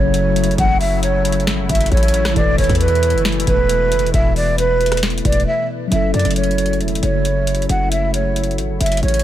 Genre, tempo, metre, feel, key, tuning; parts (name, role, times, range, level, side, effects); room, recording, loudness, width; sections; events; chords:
hip hop, trap; 135 BPM; 4/4; half-time; F# minor; A4 = 440 Hz
breathy mellow jazz flute; melody; 0.0-9.2 s; B4 to F#5; -19 LUFS; right 2 dB; low-pass filter, ping-pong delay
mellow tine electric piano; accompaniment; 0.0-9.2 s; E3 to B4; -24 LUFS; left 1 dB; medium stereo tremolo, low-pass filter
warm analog pad; sustained chords; 0.0-9.2 s; B2 to E4; -25 LUFS; left 1 dB; chorus, tremolo
hard-hitting 808-style bass; bass; 0.0-9.2 s; E1 to F#2; -19 LUFS; equal
booming analog drum machine; drums; 0.1-9.2 s; hi-hat, kick drum, rim click, snare drum; -20 LUFS; equal
digital ambience; -14 LUFS; side -12 dB against mid
0.0-5.9 A section; 5.9-9.2 B section
break 5.5-5.9
0.0 F#m7; 2.4 Esus4; 5.9 F#m7